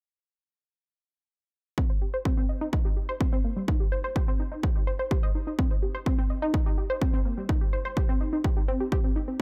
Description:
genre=melodic techno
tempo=126 BPM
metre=4/4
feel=straight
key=C minor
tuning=A4 = 440 Hz
part: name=unison pluck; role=arpeggios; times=1.8-9.3 s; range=G3 to Eb5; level=-33 LUFS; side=equal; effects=phaser, sidechain pumping, dub echo
part: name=electronic kick drum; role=drums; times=1.8-9.0 s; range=none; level=-28 LUFS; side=equal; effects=none
room=little or no reverb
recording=none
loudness=-27 LUFS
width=mono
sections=1.8-9.4 A section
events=none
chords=none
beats=| 1.78 2.25 2.73 3.21 | 3.68 4.16 4.63 5.11 | 5.59 6.06 6.54 7.01 | 7.49 7.97 8.44 8.92

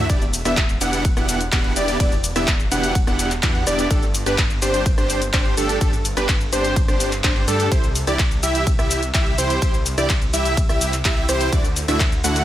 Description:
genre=EDM, festival progressive house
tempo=126 BPM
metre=4/4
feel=straight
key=E minor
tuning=A4 = 439 Hz
part: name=wide unison lead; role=arpeggios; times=0.0-12.4 s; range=A4 to F#5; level=-25 LUFS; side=equal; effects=sidechain pumping, tape echo
part: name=dense compressed supersaw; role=riff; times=0.0-12.4 s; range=A3 to F#5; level=-23 LUFS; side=right 1 dB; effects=sidechain pumping, tape echo
part: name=wide detuned saw bass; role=bass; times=0.0-12.4 s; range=E1 to G2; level=-26 LUFS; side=equal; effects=chorus, sidechain pumping
part: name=big-room dance drum kit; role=drums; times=0.1-12.4 s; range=handclaps, hi-hat, ride cymbal, rim click, shaker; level=-24 LUFS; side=left 1 dB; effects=none
part: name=electronic kick drum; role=drums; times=0.1-12.1 s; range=none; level=-20 LUFS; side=equal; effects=none
room=light reverb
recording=none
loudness=-17 LUFS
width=side -12 dB against mid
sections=0.0-12.4 A section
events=none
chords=0.1 Em7; 3.9 Gsus2; 7.7 C; 11.5 Dadd9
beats=| 0.10 0.57 1.05 1.52 | 2.00 2.48 2.95 3.43 | 3.91 4.38 4.86 5.33 | 5.81 6.29 6.76 7.24 | 7.71 8.19 8.67 9.14 | 9.62 10.10 10.57 11.05 | 11.53 12.00

